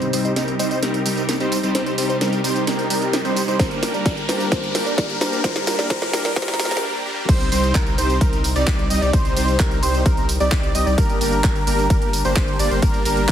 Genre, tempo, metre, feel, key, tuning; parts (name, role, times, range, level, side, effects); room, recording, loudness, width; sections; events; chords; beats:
EDM, festival progressive house; 130 BPM; 4/4; straight; C minor; A4 = 440 Hz
bell-like FM electric piano; melody; 0.0-6.8 s; C5 to Eb5; -30 LUFS; equal; chorus, ping-pong delay
lush unison pad; sustained chords; 0.0-13.3 s; C3 to Bb4; -29 LUFS; equal; chorus, vintage 12-bit sampler grit, sidechain pumping
wide unison lead; arpeggios; 0.0-13.3 s; Bb4 to Eb5; -26 LUFS; equal; sidechain pumping, ping-pong delay
supersaw chords; riff; 0.0-13.3 s; G3 to Eb5; -23 LUFS; equal; sidechain pumping, low-pass filter, ping-pong delay
saturated sub bass; bass; 0.0-13.3 s; G1 to C2; -26 LUFS; equal; sidechain pumping, high-pass filter
house drum kit; drums; 0.0-13.3 s; crash cymbal, handclaps, hi-hat, snare drum, tambourine; -25 LUFS; right 1 dB
riser; sound effects; 1.3-6.8 s; -30 LUFS; left 2 dB
electronic kick drum; drums; 3.6-13.3 s; -19 LUFS; equal; overdrive
light reverb; heavily compressed radio sound, high-pass filter; -17 LUFS; side -10 dB against mid
0.0-7.3 A section; 7.3-13.3 B section
build-up 0.0-7.3; drum fill 0.0-6.8; filter sweep on supersaw synth 0.0-7.3; filter sweep on analog synth lead 0.0-7.3; filter sweep 0.0-7.3; riser 1.3-6.8; break 6.8-7.3; drop 7.3-13.3
0.0 Cm; 3.6 Gm; 7.3 Cm; 11.0 Gm
0.36 0.83 1.29 | 1.75 2.21 2.67 3.13 | 3.60 4.06 4.52 4.98 | 5.44 5.90 6.37 6.83 | 7.29 7.75 8.21 8.67 | 9.13 9.60 10.06 10.52 | 10.98 11.44 11.90 12.37 | 12.83 13.29